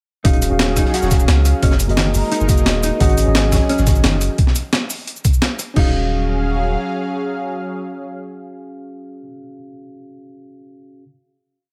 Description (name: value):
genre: liquid drum and bass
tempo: 174 BPM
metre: 4/4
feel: straight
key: Eb minor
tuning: A4 = 440 Hz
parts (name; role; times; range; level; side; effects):
- mellow tine electric piano; accompaniment; 0.2-11.0 s; Bb3 to F5; -26 LUFS; equal; dub echo
- mellow electric guitar; arpeggios; 0.2-5.9 s; Eb3 to Gb4; -28 LUFS; equal; tremolo, dub echo
- long sustained 808-style bass; bass; 0.2-6.8 s; Eb1 to Db2; -20 LUFS; equal; none
- breakbeat sampler-style drum kit; drums; 0.2-5.8 s; cabasa, crash cymbal, hi-hat, rim click, snare drum; -24 LUFS; equal; none
- crunchy breakbeat drum kit; drums; 0.2-4.3 s; hi-hat, snare drum; -31 LUFS; equal; high-pass filter on hats, high-pass filter on snare, high-pass filter on room
- electronic kick drum; drums; 0.2-5.8 s; none; -18 LUFS; equal; none
- lush unison pad; sustained chords; 0.3-9.2 s; Gb3 to F5; -28 LUFS; equal; chorus, phaser
room: light reverb, digital ambience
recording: none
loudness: -17 LUFS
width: mono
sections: 0.2-5.8 drop; 5.8-8.5 final chord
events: drop 0.2-5.8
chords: 0.2 Ebm11; 1.6 Gb69; 3.0 Ab7sus4; 4.4 N.C.; 5.8 Ebm11